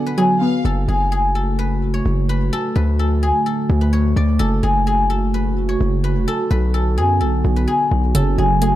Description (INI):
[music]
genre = hip hop, trap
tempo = 128 BPM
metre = 4/4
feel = half-time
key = F# minor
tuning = A4 = 441 Hz
[part]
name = guzheng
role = melody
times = 0.0-8.8 s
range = G#4 to D5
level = -21 LUFS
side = left 2 dB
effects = digital delay
[part]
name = warbly dusty pluck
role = accompaniment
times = 0.0-0.6, 8.1-8.8 s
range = C#3 to D5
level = -19 LUFS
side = right 1 dB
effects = chorus
[part]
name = dark analog pad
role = sustained chords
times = 0.0-8.8 s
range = C#3 to F#4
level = -22 LUFS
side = right 1 dB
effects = chorus
[part]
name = clear studio violin section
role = second line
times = 0.4-0.6 s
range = E#5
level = -35 LUFS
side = left 1 dB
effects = digital delay
[part]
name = hard-hitting 808-style bass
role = bass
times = 0.6-8.8 s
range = E#1 to F#2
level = -18 LUFS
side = equal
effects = none
[part]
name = electronic hi-hat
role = drums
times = 8.1-8.7 s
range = none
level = -28 LUFS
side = right 2 dB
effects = none
[sound]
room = little or no reverb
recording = dark, warm production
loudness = -15 LUFS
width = side -13 dB against mid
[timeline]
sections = 0.6-8.1 A section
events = break 0.0-0.6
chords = 0.0 Bm; 0.6 F#m; 2.5 D; 4.4 F#m; 6.3 Bm; 8.1 F#m